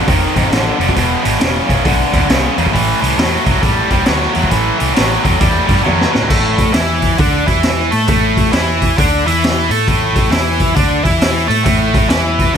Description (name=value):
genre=blues rock power trio and southern rock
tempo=134 BPM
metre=4/4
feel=swing 63% on 8ths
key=unclear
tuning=A4 = 440 Hz
part: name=tight distorted guitar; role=riff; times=0.0-12.6 s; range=E2 to A4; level=-14 LUFS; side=equal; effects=distortion
part: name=vintage muted picked electric bass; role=bass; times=0.1-12.5 s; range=E1 to A2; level=-19 LUFS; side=equal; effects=none
part: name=raw garage drum kit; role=drums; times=0.1-12.5 s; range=crash cymbal, hi-hat, kick drum, snare drum, toms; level=-16 LUFS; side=equal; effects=none
room=light reverb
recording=none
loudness=-11 LUFS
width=side -8 dB against mid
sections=0.0-6.3 A section; 6.3-12.6 B section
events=drum fill 5.9-6.3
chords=0.0 F; 1.0 E7(no3); 2.7 A7(no3); 6.3 A5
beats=0.07 0.51 | 0.96 1.40 1.85 2.29 | 2.74 3.19 3.63 4.08 | 4.52 4.97 5.41 5.86 | 6.30 6.75 7.20 7.64 | 8.09 8.54 8.98 9.43 | 9.88 10.32 10.77 11.22 | 11.66 12.11 12.56